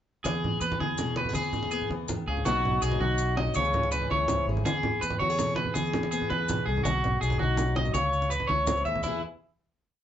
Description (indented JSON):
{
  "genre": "highlife guitar band",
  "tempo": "109 BPM (dotted quarters)",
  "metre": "12/8",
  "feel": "straight",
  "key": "E major",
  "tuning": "A4 = 444 Hz",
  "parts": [
    { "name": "electric guitar at the edge of break-up", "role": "arpeggios", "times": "0.2-9.2 s", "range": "E4 to E5", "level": "-28 LUFS", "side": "equal", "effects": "none" },
    { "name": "fingered electric bass", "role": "bass", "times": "0.2-9.2 s", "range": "G#1 to E2", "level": "-31 LUFS", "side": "equal", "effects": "none" },
    { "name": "maracas", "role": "percussion", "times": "0.2-9.2 s", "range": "none", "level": "-40 LUFS", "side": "left 4 dB", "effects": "none" },
    { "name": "fingerpicked steel-string acoustic guitar", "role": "accompaniment", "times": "0.3-9.2 s", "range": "F#2 to G#4", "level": "-34 LUFS", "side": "left 3 dB", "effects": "none" },
    { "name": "congas", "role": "percussion", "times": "0.3-9.2 s", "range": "none", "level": "-32 LUFS", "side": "right 1 dB", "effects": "none" }
  ],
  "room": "moderate small room reverb, RT60 0.5 s",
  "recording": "band playing live in one room, nothing above 7.6 kHz",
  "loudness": "-25 LUFS",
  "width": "side -10 dB against mid",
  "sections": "0.2-9.0 groove; 9.0-10.0 final chord",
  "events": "none",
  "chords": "0.2 E; 2.4 B; 3.5 C#m; 4.6 E; 6.8 B; 7.9 C#m; 9.0 E"
}